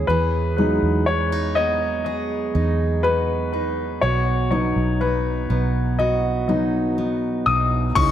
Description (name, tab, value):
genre	pop ballad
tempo	61 BPM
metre	4/4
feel	straight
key	unclear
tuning	A4 = 440 Hz
part	warm grand piano	accompaniment	0.0-8.1 s	E3 to D#6	-21 LUFS	left 3 dB	analog delay
part	picked steel-string acoustic guitar	arpeggios	0.0-8.1 s	B2 to G#4	-27 LUFS	right 6 dB	analog delay
part	vintage muted fingered electric bass	bass	0.0-8.1 s	B1 to E2	-24 LUFS	equal	none
part	pop drum kit	drums	8.0-8.1 s	crash cymbal, kick drum, toms	-20 LUFS	equal	none
room	light reverb, small room ambience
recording	echo-heavy mix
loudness	-19 LUFS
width	side -10 dB against mid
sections	0.0-8.0 A section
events	grand piano solo 0.0-8.0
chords	0.1 Emaj7; 4.0 B